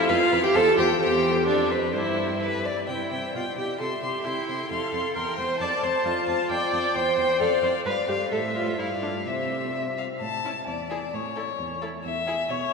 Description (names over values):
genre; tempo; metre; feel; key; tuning
quick classical-period movement for string quartet; 132 BPM; 2/4; rubato; C major; A4 = 440 Hz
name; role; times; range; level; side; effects
warm violin; melody; 0.0-12.7 s; C5 to A5; -30 LUFS; left 6 dB; none
rich viola; accompaniment; 0.0-12.3 s; C4 to D5; -25 LUFS; equal; none
rich violin; second line; 0.1-12.3 s; E4 to C6; -31 LUFS; left 2 dB; none
warm cello; bass; 0.1-12.7 s; E2 to C3; -33 LUFS; right 3 dB; none
room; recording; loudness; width
wet cathedral reverb, RT60 4.5 s; minimal, uncompressed stereo recording; -23 LUFS; side -4 dB against mid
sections
0.0-2.9 A section; 2.9-10.2 B section; 10.2-12.7 C section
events
none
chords
0.1 G7(no3)/F; 0.6 C/E; 1.5 F; 1.9 C/G; 2.4 G; 2.9 C; 3.4 G7; 3.8 C; 4.7 F; 5.2 C7; 5.6 F; 6.5 G5; 7.0 C/E; 7.4 Dm7/F; 7.9 G7; 8.3 Am; 8.8 G5; 9.3 C; 10.2 A; 10.7 E7(no3); 11.1 A; 12.0 N.C.